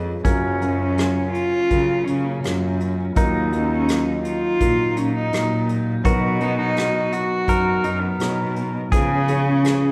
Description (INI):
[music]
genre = acoustic folk-pop ballad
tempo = 83 BPM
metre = 4/4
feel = straight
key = F# major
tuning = A4 = 440 Hz
[part]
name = warm upright piano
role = accompaniment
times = 0.0-9.9 s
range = F#1 to C#5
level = -28 LUFS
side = equal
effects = none
[part]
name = warm cello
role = bass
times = 0.0-9.9 s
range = D#2 to C#3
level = -26 LUFS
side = equal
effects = none
[part]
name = pedal steel guitar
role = second line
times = 0.2-9.9 s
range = C#4 to A#4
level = -30 LUFS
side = equal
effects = none
[part]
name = soft brush drum kit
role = drums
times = 0.2-9.8 s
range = hi-hat, kick drum, rim click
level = -26 LUFS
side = equal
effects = none
[part]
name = warm cello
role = melody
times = 0.6-9.9 s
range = A#3 to F#4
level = -25 LUFS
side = equal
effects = none
[sound]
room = moderate recital hall reverb, RT60 1.5 s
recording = recorded in a church or concert hall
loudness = -21 LUFS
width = mono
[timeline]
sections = 0.2-9.9 A section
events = none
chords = 0.2 F#maj7; 3.2 D#madd9; 6.0 Bmaj7; 8.9 C#7